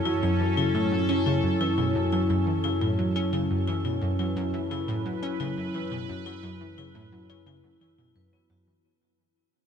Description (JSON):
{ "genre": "ambient, sequencer-driven space music", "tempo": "87 BPM", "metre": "4/4", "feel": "straight", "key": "unclear", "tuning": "A4 = 439 Hz", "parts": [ { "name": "sweeping resonant pad", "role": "sustained chords", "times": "0.0-8.8 s", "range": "F#3 to B4", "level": "-32 LUFS", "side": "right 4 dB", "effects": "chorus" }, { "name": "vibraphone with hard mallets", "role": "arpeggios", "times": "0.0-8.9 s", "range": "B3 to B4", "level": "-30 LUFS", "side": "left 5 dB", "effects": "auto-pan, tape echo" }, { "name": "analog drone", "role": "bass", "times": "0.0-8.8 s", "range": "F#2", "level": "-32 LUFS", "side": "equal", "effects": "chorus" }, { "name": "pulsing gated texture", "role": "texture", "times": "0.0-8.9 s", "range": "A4 to A5", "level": "-42 LUFS", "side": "left 2 dB", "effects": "chorus, built-in reverb" }, { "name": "analog pluck", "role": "riff", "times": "0.1-8.8 s", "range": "F#2 to C#4", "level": "-29 LUFS", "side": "right 1 dB", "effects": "chorus, cassette tape, tape echo" } ], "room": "moderate huge ambient reverb, RT60 7.9 s", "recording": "none", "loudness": "-24 LUFS", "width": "side -7 dB against mid", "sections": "0.0-8.8 A section", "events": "fade-out 1.5-8.8", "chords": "0.0 F#m" }